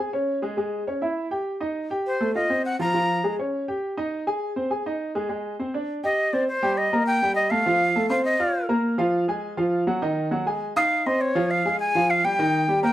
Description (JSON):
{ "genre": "jazz", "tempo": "203 BPM", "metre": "4/4", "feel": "straight", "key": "Ab major", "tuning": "A4 = 439 Hz", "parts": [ { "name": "bright upright piano", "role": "accompaniment", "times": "0.0-12.9 s", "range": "Eb3 to F6", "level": "-24 LUFS", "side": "equal", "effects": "none" }, { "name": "breathy bright jazz flute", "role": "melody", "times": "2.1-3.3, 6.0-8.7, 10.8-12.9 s", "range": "C5 to Bb5", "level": "-22 LUFS", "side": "equal", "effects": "none" } ], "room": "moderate club reverb, RT60 0.7 s", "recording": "none", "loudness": "-21 LUFS", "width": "side -13 dB against mid", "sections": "0.0-6.5 A section; 6.5-12.9 B section", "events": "none", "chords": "0.0 Db5; 0.6 Dbm/Ab; 1.2 Eb; 1.8 Am7b5; 2.3 F5; 2.9 Bbm7; 3.5 Eb7; 4.1 Ab; 5.9 G5; 6.5 Cm7; 7.7 F7; 8.8 Bb5; 10.0 Ebm; 10.6 Ab; 11.2 Dbmaj7; 12.4 Eb", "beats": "0.28 | 0.57 0.87 1.16 1.46 | 1.75 2.05 2.35 2.64 | 2.94 3.23 3.53 3.82 | 4.12 4.42 4.71 5.00 | 5.30 5.60 5.89 6.19 | 6.48 6.78 7.07 7.37 | 7.66 7.96 8.25 8.55 | 8.84 9.14 9.44 9.73 | 10.03 10.32 10.62 10.91 | 11.21 11.51 11.80 12.10 | 12.39 12.69" }